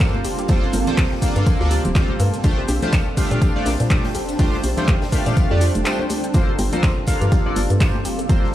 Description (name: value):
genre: deep house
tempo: 123 BPM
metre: 4/4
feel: swing 57% on 16ths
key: G minor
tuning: A4 = 441 Hz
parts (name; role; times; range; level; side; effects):
- warm analog pad; sustained chords; 0.0-8.5 s; G3 to C5; -31 LUFS; equal; chorus, sidechain pumping
- warbly dusty pluck; arpeggios; 0.0-8.4 s; F4 to G5; -32 LUFS; left 2 dB; chorus, sidechain pumping, tape echo
- chorused polysynth; stabs; 0.0-8.5 s; A3 to F5; -25 LUFS; equal; sidechain pumping, tape echo
- hollow knocking FM bass; bass; 0.0-8.5 s; D1 to Bb2; -21 LUFS; equal; sidechain pumping
- big rock drum kit; drums; 0.0-8.5 s; hi-hat, snare drum, tambourine; -39 LUFS; left 2 dB; none
- electronic kick drum; drums; 0.0-8.4 s; none; -18 LUFS; equal; overdrive
- punchy analog drum machine; drums; 0.0-8.4 s; cabasa, handclaps, hi-hat; -28 LUFS; equal; overdrive
- granular cloud pad; texture; 0.0-8.5 s; Bb3 to A5; -28 LUFS; right 3 dB; built-in reverb, sidechain pumping
- congas and bongos; percussion; 0.1-8.3 s; none; -32 LUFS; left 3 dB; none
room: small room ambience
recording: played on a big sound system in a bare room, stone room reverb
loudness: -16 LUFS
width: side -13 dB against mid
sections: 0.0-8.5 A section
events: break 5.9-6.3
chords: 0.0 Gm11; 2.4 Bbmaj13